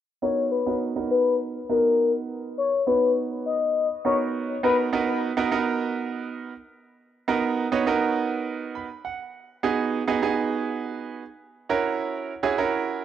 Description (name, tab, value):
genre	pop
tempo	102 BPM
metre	4/4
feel	straight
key	unclear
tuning	A4 = 440 Hz
part	expressive synth lead	melody	0.2-4.8 s	A#4 to D#5	-23 LUFS	left 5 dB	chorus, cassette tape, analog delay
part	bright grand piano	accompaniment	0.2-13.0 s	B3 to B5	-25 LUFS	right 6 dB	cassette tape
room	moderate spring reverb, RT60 2.6 s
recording	home recording on cassette, low-pass filter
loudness	-22 LUFS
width	side -10 dB against mid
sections	0.2-4.9 A section; 4.9-13.0 B section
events	filter sweep 0.2-4.9; grand piano fill 8.5-9.6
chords	0.2 Bmaj7; 9.6 G#m7; 11.7 F#7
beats	| 0.23 0.81 1.40 1.99 | 2.58 3.17 3.75 4.34 | 4.93 5.52 6.11 6.70 | 7.28 7.87 8.46 9.05 | 9.64 10.22 10.81 11.40 | 11.99 12.58